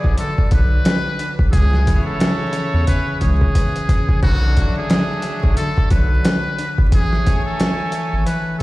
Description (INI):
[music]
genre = hip hop, boom-bap hip-hop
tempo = 89 BPM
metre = 4/4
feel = swing 59% on 16ths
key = B dorian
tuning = A4 = 441 Hz
[part]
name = trumpet with metal mute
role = melody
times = 0.0-8.6 s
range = F#4 to B4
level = -24 LUFS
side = equal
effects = high-pass filter, low-pass filter, tape echo
[part]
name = concert harp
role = accompaniment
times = 0.0-8.6 s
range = C#3 to B4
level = -24 LUFS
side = left 1 dB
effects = high-pass filter, low-pass filter
[part]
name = brilliant trumpet section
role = stabs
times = 0.0-8.6 s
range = F#3 to G#5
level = -29 LUFS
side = right 1 dB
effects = high-pass filter, low-pass filter, tape echo
[part]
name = round analog bass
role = bass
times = 0.0-8.3 s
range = G#1 to E2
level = -17 LUFS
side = equal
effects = none
[part]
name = dusty soul sampler-style drum kit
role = drums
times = 0.0-8.6 s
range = crash cymbal, hi-hat, kick drum, snare drum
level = -17 LUFS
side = equal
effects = none
[sound]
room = little or no reverb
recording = played on a big sound system in a bare room, stone room reverb, vinyl crackle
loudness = -15 LUFS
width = side -19 dB against mid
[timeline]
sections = 0.0-8.6 A section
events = drum fill 2.9-4.2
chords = 0.0 Bm7; 1.5 C#m7; 4.2 Bm7; 6.9 Amaj7